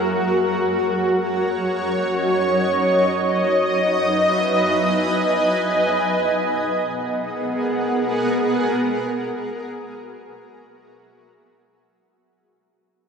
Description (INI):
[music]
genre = ambient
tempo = free time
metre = none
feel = none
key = unclear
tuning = A4 = 440 Hz
[part]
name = granular cloud pad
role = sustained chords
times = 0.0-12.1 s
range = F#3 to G#5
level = -18 LUFS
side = equal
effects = built-in reverb
[sound]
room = wet cathedral reverb, RT60 5.3 s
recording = dreamy mix soaked in reverb, nothing above 10.8 kHz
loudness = -18 LUFS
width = side -6 dB against mid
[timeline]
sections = 0.0-12.1 A section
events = fade-out 3.8-12.0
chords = 0.0 F#6; 2.7 C#m7; 5.8 G#m7/B; 8.9 F#7/B